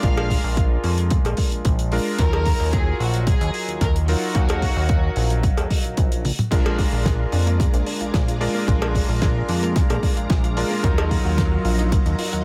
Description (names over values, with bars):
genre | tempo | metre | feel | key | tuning
nu-disco, nu disco | 111 BPM | 4/4 | straight | Bb mixolydian | A4 = 440 Hz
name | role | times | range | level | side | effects
dark studio violin section | melody | 0.0-5.9 s | Gb4 to F5 | -32 LUFS | equal | dub echo
bright electric grand piano | accompaniment | 0.0-12.4 s | Gb3 to F5 | -30 LUFS | equal | sidechain pumping, low-pass filter, dub echo
chorused synth bass | bass | 0.0-12.4 s | Bb1 to F2 | -25 LUFS | equal | sidechain pumping
damped 70s drum kit | drums | 0.0-12.4 s | crash cymbal, hi-hat, snare drum, toms | -31 LUFS | equal | small room ambience
electronic kick drum | drums | 0.0-12.0 s | none | -23 LUFS | equal | small room ambience
cowbell | percussion | 0.2-11.1 s | none | -30 LUFS | equal | none
string machine, full ensemble | sustained chords | 6.5-12.4 s | Gb3 to Bb5 | -33 LUFS | equal | ensemble chorus, sidechain pumping
analog pluck | arpeggios | 6.5-12.4 s | Ab3 to Bb4 | -34 LUFS | equal | chorus, sidechain pumping, dub echo
room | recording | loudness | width
studio reverb | none | -20 LUFS | mono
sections
0.0-12.4 A section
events
drum fill 6.2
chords
0.0 Bb7; 2.2 Ebmadd9; 6.5 Bb7; 10.8 Ebmadd9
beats
| 0.03 0.57 1.11 1.65 | 2.19 2.73 3.27 3.81 | 4.36 4.90 5.44 5.98 | 6.52 7.06 7.60 8.14 | 8.68 9.22 9.76 10.30 | 10.84 11.38 11.92